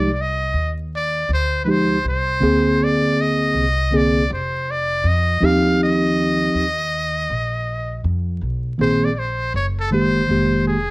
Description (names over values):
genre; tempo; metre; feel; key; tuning
hip hop, jazz-hop; 80 BPM; 4/4; swing 65% on 16ths; Eb major; A4 = 441 Hz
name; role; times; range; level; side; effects
trumpet with metal mute; melody; 0.0-10.9 s; Ab4 to F5; -21 LUFS; equal; none
mellow tine electric piano; accompaniment; 0.0-10.8 s; D3 to Ab4; -17 LUFS; equal; medium stereo tremolo
upright bass; bass; 0.0-10.9 s; F1 to F2; -23 LUFS; equal; none
room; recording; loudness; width
light reverb; worn, warbling old tape, cassette tape, vinyl crackle, warbly pitch drift; -17 LUFS; side -24 dB against mid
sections
0.0-8.8 A section; 8.8-10.9 B section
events
none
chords
0.0 Fm9/C; 2.4 Bb9; 5.4 Eb69; 8.8 Bb9sus4; 9.5 Gbsus2; 10.3 Fm11